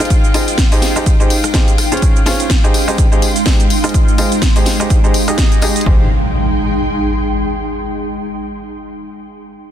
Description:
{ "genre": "piano house", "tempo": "125 BPM", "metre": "4/4", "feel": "swing 57% on 16ths", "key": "Ab major", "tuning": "A4 = 437 Hz", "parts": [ { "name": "rich studio violin section", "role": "sustained chords", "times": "0.0-5.9 s", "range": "F4 to G5", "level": "-27 LUFS", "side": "left 2 dB", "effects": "sidechain pumping, low-pass filter" }, { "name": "clear upright piano", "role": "riff", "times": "0.0-6.0 s", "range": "Db4 to Eb5", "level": "-20 LUFS", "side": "equal", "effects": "sidechain pumping, low-pass filter, tape echo" }, { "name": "garage drum kit", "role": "drums", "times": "0.0-5.9 s", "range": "cabasa, hi-hat, rim click, snare drum", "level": "-19 LUFS", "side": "right 1 dB", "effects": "small room ambience" }, { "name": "tambourine", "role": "percussion", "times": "0.0-5.8 s", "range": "none", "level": "-30 LUFS", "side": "left 2 dB", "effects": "none" }, { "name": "ethereal airy pad", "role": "texture", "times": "0.0-7.7 s", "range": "Ab3 to C6", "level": "-19 LUFS", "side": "right 1 dB", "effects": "ensemble chorus, built-in reverb, sidechain pumping" }, { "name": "electronic kick drum", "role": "drums", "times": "0.1-6.0 s", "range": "none", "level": "-13 LUFS", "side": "equal", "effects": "small room ambience" }, { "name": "fat analog bass", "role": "bass", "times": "5.9-6.1 s", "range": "Ab1", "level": "-18 LUFS", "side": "equal", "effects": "none" }, { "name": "impact", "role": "sound effects", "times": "5.9-7.8 s", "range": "none", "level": "-20 LUFS", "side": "equal", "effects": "none" } ], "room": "light reverb", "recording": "dense, heavily limited modern master", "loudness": "-11 LUFS", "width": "side -10 dB against mid", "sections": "0.0-5.9 A section; 5.9-7.8 B section", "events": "none", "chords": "0.0 Abmaj7", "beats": "| 0.10 0.58 1.06 1.54 | 2.02 2.50 2.98 3.46 | 3.94 4.42 4.90 5.38 | 5.86 6.34 6.82 7.30" }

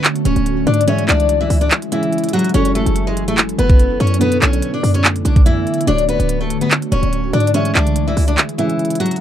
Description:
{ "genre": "hip hop, trap", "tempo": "144 BPM", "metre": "4/4", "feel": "half-time", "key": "unclear", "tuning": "A4 = 441 Hz", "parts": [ { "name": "picked steel-string acoustic guitar", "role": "melody", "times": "0.0-9.2 s", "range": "E3 to D5", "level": "-19 LUFS", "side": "left 2 dB", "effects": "none" }, { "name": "felt-muted upright piano", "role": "accompaniment", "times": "0.0-9.2 s", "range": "B2 to E5", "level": "-24 LUFS", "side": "equal", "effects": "none" }, { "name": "ethereal airy pad", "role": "sustained chords", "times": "0.0-9.2 s", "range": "D3 to A4", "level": "-22 LUFS", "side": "right 1 dB", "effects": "ensemble chorus, built-in reverb" }, { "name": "trap drum kit", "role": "drums", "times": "0.0-9.2 s", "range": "handclaps, hi-hat, kick drum", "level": "-16 LUFS", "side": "equal", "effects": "none" }, { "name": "short 808-style bass", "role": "bass", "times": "0.3-8.4 s", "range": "D1 to G#2", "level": "-17 LUFS", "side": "equal", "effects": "none" } ], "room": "little or no reverb", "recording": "dark, warm production", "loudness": "-13 LUFS", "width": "side -10 dB against mid", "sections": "0.0-9.2 A section", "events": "break 1.7-2.5, 8.4-9.2", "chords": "0.0 Dmaj7; 0.9 C#m; 2.5 F#m7; 4.2 Bm7; 5.9 Dmaj7; 7.5 C#m", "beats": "0.04 0.46 | 0.88 1.29 1.71 2.13 | 2.54 2.96 3.38 3.79 | 4.21 4.63 5.04 5.46 | 5.88 6.29 6.71 7.13 | 7.54 7.96 8.38 8.79" }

